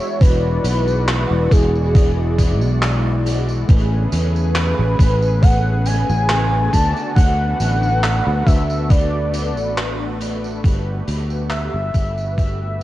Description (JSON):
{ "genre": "vaporwave", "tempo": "69 BPM", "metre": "4/4", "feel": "straight", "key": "A major", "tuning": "A4 = 440 Hz", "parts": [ { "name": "warm velvety synth lead", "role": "melody", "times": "0.0-12.8 s", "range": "G#4 to A5", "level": "-23 LUFS", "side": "equal", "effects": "chorus, tape echo" }, { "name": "mellow synth brass", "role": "accompaniment", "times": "0.0-12.8 s", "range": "G#3 to E5", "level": "-26 LUFS", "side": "left 1 dB", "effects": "lush chorus, tape echo" }, { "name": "lush unison pad", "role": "sustained chords", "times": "0.0-12.8 s", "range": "C#3 to G#4", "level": "-29 LUFS", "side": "equal", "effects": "chorus" }, { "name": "oversized low-tuned drum kit", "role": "drums", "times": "0.0-12.8 s", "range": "handclaps, hi-hat, tambourine", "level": "-27 LUFS", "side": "equal", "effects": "gated reverb" }, { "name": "sustaining fretless electric bass", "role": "bass", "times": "0.2-12.8 s", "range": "E1 to E2", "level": "-19 LUFS", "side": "equal", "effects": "none" }, { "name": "electronic kick drum", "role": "drums", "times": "0.2-12.6 s", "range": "none", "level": "-14 LUFS", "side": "equal", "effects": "overdrive" } ], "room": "small room ambience", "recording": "cassette tape", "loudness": "-15 LUFS", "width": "side -15 dB against mid", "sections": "0.0-12.8 A section", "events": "fade-out 8.3-12.8", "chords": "0.0 E9; 3.7 Amaj9; 6.7 D6; 10.6 Gmaj9", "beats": "| 0.21 1.08 1.95 2.82 | 3.69 4.56 5.43 6.30 | 7.17 8.04 8.90 9.78 | 10.64 11.51 12.38" }